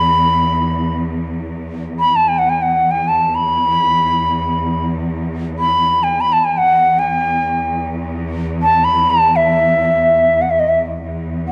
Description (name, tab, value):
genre	arabic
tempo	free time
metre	none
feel	none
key	E maqam suznak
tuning	A4 = 440 Hz
part	bright reedy ney	melody	0.0-11.5 s	D#5 to B5	-16 LUFS	equal	none
part	bright studio cello section	drone	0.0-11.5 s	E2	-24 LUFS	equal	none
room	moderate recital hall reverb, RT60 1.5 s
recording	dark, warm production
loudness	-16 LUFS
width	mono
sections	0.0-11.0 A section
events	none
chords	none